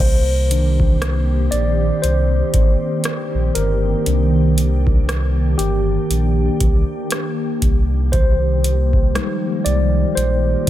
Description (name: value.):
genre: contemporary R&B.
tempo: 59 BPM.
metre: 4/4.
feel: swing 58% on 16ths.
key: C minor.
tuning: A4 = 441 Hz.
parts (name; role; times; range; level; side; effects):
mellow tine electric piano; accompaniment; 0.0-10.7 s; Eb3 to D5; -22 LUFS; left 1 dB; medium stereo tremolo.
glassy FM pad; sustained chords; 0.0-10.7 s; Eb3 to G4; -23 LUFS; equal; ensemble chorus, built-in reverb.
sub bass with octave; bass; 0.0-10.7 s; G1 to C2; -18 LUFS; equal; none.
booming analog drum machine; drums; 0.0-10.7 s; hi-hat, kick drum, rim click; -18 LUFS; equal; none.
room: little or no reverb.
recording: none.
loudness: -15 LUFS.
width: side -13 dB against mid.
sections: 0.0-10.7 A section.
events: tine electric piano solo 0.0-10.7.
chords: 0.0 Cm7; 7.6 Fm11/C.